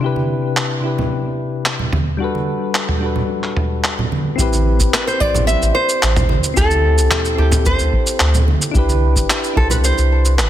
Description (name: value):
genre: sunset chillout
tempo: 110 BPM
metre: 4/4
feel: straight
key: A dorian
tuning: A4 = 439 Hz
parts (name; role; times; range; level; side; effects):
- soft electric-piano-like synth keys; accompaniment; 0.0-10.5 s; C3 to C5; -21 LUFS; left 2 dB; chorus, auto-pan, ping-pong delay
- congas; percussion; 0.2-9.8 s; none; -24 LUFS; right 3 dB; none
- dusty soul sampler-style drum kit; drums; 0.6-10.5 s; handclaps, shaker, toms; -19 LUFS; equal; none
- warm sub bass; bass; 4.4-10.5 s; G1 to D2; -16 LUFS; equal; none
- electronic kick drum; drums; 4.4-9.7 s; none; -19 LUFS; equal; none
- nylon-string guitar; melody; 4.9-10.5 s; G4 to E5; -19 LUFS; equal; ping-pong delay
room: light reverb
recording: dense, heavily limited modern master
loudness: -14 LUFS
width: side -12 dB against mid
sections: 0.0-4.4 A section; 4.4-10.5 B section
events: none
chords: 0.0 Cmaj7; 1.9 Gmaj9; 4.4 Am9; 6.6 D7sus4; 8.7 Cmaj7